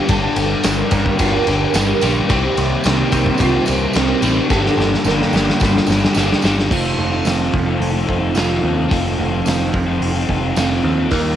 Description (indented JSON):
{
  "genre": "rock, shoegaze and dream pop",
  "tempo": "109 BPM",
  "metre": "4/4",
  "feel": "straight",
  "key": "unclear",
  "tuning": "A4 = 442 Hz",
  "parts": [
    { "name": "picked twelve-string acoustic guitar", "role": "arpeggios", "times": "0.0-6.4, 11.1-11.4 s", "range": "F4 to Bb4", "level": "-23 LUFS", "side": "right 8 dB", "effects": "ensemble chorus, cassette tape, tape echo" },
    { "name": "crunchy overdriven guitar", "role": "riff", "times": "0.0-11.4 s", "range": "G2 to A4", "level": "-21 LUFS", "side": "left 6 dB", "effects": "wide subtle chorus, cassette tape" },
    { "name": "overdriven electric guitar", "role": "riff", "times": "0.0-11.4 s", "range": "F2 to Eb4", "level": "-21 LUFS", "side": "equal", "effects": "phaser, cassette tape" },
    { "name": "growling picked electric bass", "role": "bass", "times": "0.1-11.3 s", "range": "F1 to Eb2", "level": "-21 LUFS", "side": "equal", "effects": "overdrive" },
    { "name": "big rock drum kit", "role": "drums", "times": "0.1-11.2 s", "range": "crash cymbal, hi-hat, kick drum, ride cymbal, snare drum", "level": "-21 LUFS", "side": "equal", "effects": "none" },
    { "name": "tambourine", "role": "percussion", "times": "0.1-10.7 s", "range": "none", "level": "-32 LUFS", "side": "right 7 dB", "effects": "none" },
    { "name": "mellow electric guitar", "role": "riff", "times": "2.3-11.4 s", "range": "F2 to G4", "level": "-24 LUFS", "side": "right 6 dB", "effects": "reverse reverb, cassette tape" }
  ],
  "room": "light reverb",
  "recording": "home recording on cassette",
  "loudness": "-14 LUFS",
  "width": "side -10 dB against mid",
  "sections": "0.0-6.7 A section; 6.7-11.4 B section",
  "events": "drum fill 4.5-6.7",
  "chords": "0.0 Gm9; 2.3 Cm7; 4.5 Gm7; 6.7 F7"
}